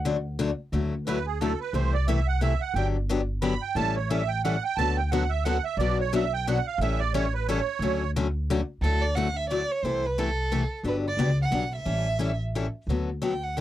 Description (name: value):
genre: acoustic string swing (jazz manouche)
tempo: 178 BPM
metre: 3/4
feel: swing 60% on 8ths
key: D major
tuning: A4 = 440 Hz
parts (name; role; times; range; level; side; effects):
- upright bass; bass; 0.0-13.6 s; G1 to D2; -28 LUFS; equal; none
- picked steel-string acoustic guitar; accompaniment; 0.1-13.6 s; B2 to A4; -28 LUFS; left 4 dB; none
- musette accordion; second line; 1.1-8.1 s; G#4 to B5; -29 LUFS; right 9 dB; none
- warm violin; melody; 8.8-13.6 s; A4 to G5; -29 LUFS; right 2 dB; none
room: little or no reverb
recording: dry, close 1970s-style studio recording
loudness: -24 LUFS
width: side -13 dB against mid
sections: 0.7-8.8 A section; 8.8-13.6 B section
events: accordion solo 0.7-8.8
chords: 0.0 D; 0.7 Dadd9; 1.7 C6; 2.8 Gmaj7; 3.8 A7; 4.8 D6; 5.8 Bm; 6.8 A7; 7.8 Dmaj7; 8.8 Dadd9; 9.8 C6; 10.8 Gmaj7; 11.9 A7; 12.9 D6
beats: 0.05 0.39 | 0.72 1.06 1.40 | 1.74 2.07 2.41 | 2.75 3.09 3.42 | 3.76 4.10 4.44 | 4.78 5.11 5.45 | 5.79 6.12 6.46 | 6.80 7.13 7.47 | 7.81 8.15 8.48 | 8.82 9.16 9.50 | 9.83 10.17 10.51 | 10.85 11.19 11.52 | 11.86 12.20 12.54 | 12.88 13.21 13.55